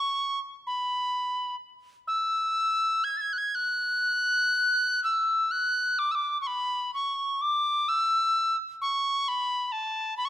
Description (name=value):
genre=celtic folk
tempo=42 BPM (dotted quarters)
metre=6/8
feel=uneven beats, rubato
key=unclear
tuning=A4 = 440 Hz
part: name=bright reedy wooden whistle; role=solo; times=0.0-10.3 s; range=A5 to A6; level=-24 LUFS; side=equal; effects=none
room=light reverb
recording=none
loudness=-24 LUFS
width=side -12 dB against mid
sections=0.0-10.3 A section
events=none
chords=none